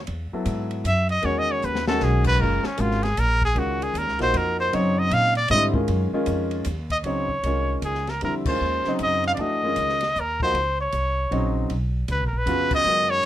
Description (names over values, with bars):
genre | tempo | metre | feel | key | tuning
modal jazz | 155 BPM | 3/4 | swing 64% on 8ths | unclear | A4 = 440 Hz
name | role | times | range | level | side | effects
upright bass | bass | 0.0-13.2 s | F#1 to A#2 | -26 LUFS | equal | none
compact cocktail drum kit | drums | 0.1-13.3 s | crash cymbal, hi-hat, kick drum, ride cymbal, snare drum | -33 LUFS | left 1 dB | none
warm grand piano | accompaniment | 0.3-13.3 s | C#3 to A4 | -26 LUFS | left 1 dB | none
clear trumpet | melody | 0.9-13.3 s | C#4 to E#5 | -23 LUFS | equal | none
room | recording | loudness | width
light reverb | minimal, uncompressed stereo recording | -20 LUFS | side -12 dB against mid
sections
0.0-7.0 A section; 7.0-13.3 B section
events
trumpet solo 0.0-7.0; drum fill 1.6-2.0; band accent 8.4, 12.7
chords
0.0 Emaj9; 2.4 F#maj9; 7.0 Dbmaj9; 11.7 Cbadd9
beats
| 0.07 0.46 0.85 | 1.24 1.62 2.01 | 2.40 2.78 3.17 | 3.56 3.94 4.33 | 4.72 5.11 5.49 | 5.88 6.27 6.66 | 7.04 7.43 7.82 | 8.21 8.60 8.99 | 9.37 9.76 10.15 | 10.54 10.93 11.31 | 11.70 12.09 12.47 | 12.86 13.25